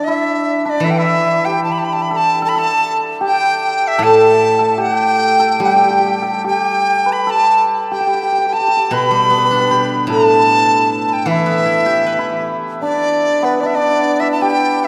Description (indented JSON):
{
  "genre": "chinese traditional, Chinese chamber ensemble",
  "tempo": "76 BPM",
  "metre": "4/4",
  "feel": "rubato",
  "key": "unclear",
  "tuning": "A4 = 442 Hz",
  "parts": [
    { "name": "dizi", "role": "melody", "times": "0.0-14.9 s", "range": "B4 to B5", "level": "-17 LUFS", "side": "equal", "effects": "none" },
    { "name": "hammered dulcimer", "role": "second line", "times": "0.0-14.9 s", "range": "B3 to B4", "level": "-20 LUFS", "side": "equal", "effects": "none" },
    { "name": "steel-string zither", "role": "accompaniment", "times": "0.0-13.6 s", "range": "A2 to B4", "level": "-20 LUFS", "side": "equal", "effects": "none" }
  ],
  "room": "wet cathedral reverb, RT60 4.6 s",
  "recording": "recorded in a church or concert hall",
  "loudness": "-15 LUFS",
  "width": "mono",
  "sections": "0.0-14.9 A section",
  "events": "none",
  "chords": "none"
}